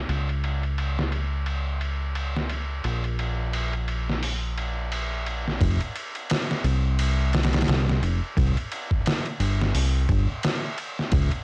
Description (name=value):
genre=trip hop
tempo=87 BPM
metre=4/4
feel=swing 57% on 16ths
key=unclear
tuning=A4 = 440 Hz
part: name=deep dub fingered electric bass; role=bass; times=0.0-11.3 s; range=F1 to Db2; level=-24 LUFS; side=equal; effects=tube saturation
part: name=trip hop sampler-style drum kit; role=drums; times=0.1-11.4 s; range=hi-hat, kick drum, ride cymbal, snare drum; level=-26 LUFS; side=equal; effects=overdrive, low-pass filter on cymbals, cassette tape, low-pass filter on snare, low-pass filter on hats, low-pass filter on kick
room=little or no reverb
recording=home recording on cassette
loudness=-23 LUFS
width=side -34 dB against mid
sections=0.0-5.6 A section; 5.6-11.4 B section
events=none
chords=none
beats=| 0.09 0.78 1.47 2.16 | 2.85 3.54 4.23 4.92 | 5.61 6.29 6.99 7.67 | 8.36 9.05 9.74 10.43 | 11.12